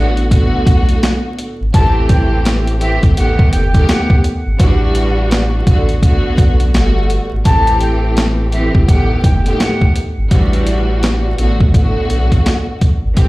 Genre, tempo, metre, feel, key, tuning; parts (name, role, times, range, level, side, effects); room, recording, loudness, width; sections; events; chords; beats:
hip hop, boom-bap hip-hop; 84 BPM; 4/4; swing 61% on 16ths; A4 = 440 Hz
silver concert flute; melody; 0.0-9.9 s; E5 to A5; -21 LUFS; equal; high-pass filter, low-pass filter, digital delay
warm studio string section; accompaniment; 0.0-13.3 s; A2 to G4; -18 LUFS; equal; cassette tape, high-pass filter, low-pass filter
sub bass with octave; bass; 0.0-13.3 s; F#1 to B1; -15 LUFS; equal
boom bap sampler-style drum kit; drums; 0.2-13.3 s; hi-hat, kick drum, snare drum; -12 LUFS; equal
light reverb; played on a big sound system in a bare room, large studio reverb, vinyl crackle; -11 LUFS; side -19 dB against mid
0.0-7.5 A section; 7.5-13.3 B section
0.0 Bm7/A; 1.7 Am7; 3.2 B7b13; 4.6 Em9/A; 5.7 Bm7/A; 6.7 Gmaj9; 7.5 Am7; 8.9 B7b13; 10.3 Em9/A; 11.4 Bm7/A
0.31 1.03 | 1.74 2.46 3.17 3.88 | 4.60 5.31 6.03 6.74 | 7.46 8.17 8.88 9.60 | 10.31 11.03 11.74 12.46 | 13.17